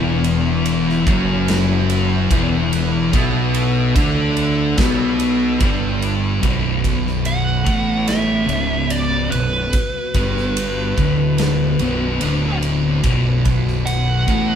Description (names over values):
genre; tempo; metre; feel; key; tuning
stoner and doom metal; 73 BPM; 4/4; straight; B minor; A4 = 440 Hz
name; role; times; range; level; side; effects
ensemble organ-string; sustained chords; 0.0-14.6 s; B3 to F#5; -32 LUFS; equal; ensemble chorus
fuzz guitar; riff; 0.0-6.4 s; E2 to D4; -24 LUFS; right 3 dB; distortion
thick fuzz guitar; riff; 0.0-14.6 s; B1 to D4; -20 LUFS; left 6 dB; distortion
thick fuzz guitar; riff; 0.0-14.6 s; B1 to D4; -24 LUFS; right 7 dB; distortion
fuzz fingered electric bass; bass; 0.0-14.6 s; B0 to D2; -22 LUFS; right 1 dB; overdrive, tube saturation
big rock drum kit; drums; 0.2-14.5 s; kick drum, ride cymbal, snare drum; -23 LUFS; right 1 dB; none
fuzz lead guitar; melody; 7.3-14.6 s; B4 to F#5; -23 LUFS; right 2 dB; wah, distortion
room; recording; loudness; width
moderate studio reverb, RT60 0.7 s; band playing live in one room; -15 LUFS; side -8 dB against mid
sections
0.0-6.4 A section; 6.4-14.6 B section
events
none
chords
0.0 E5; 6.4 Bm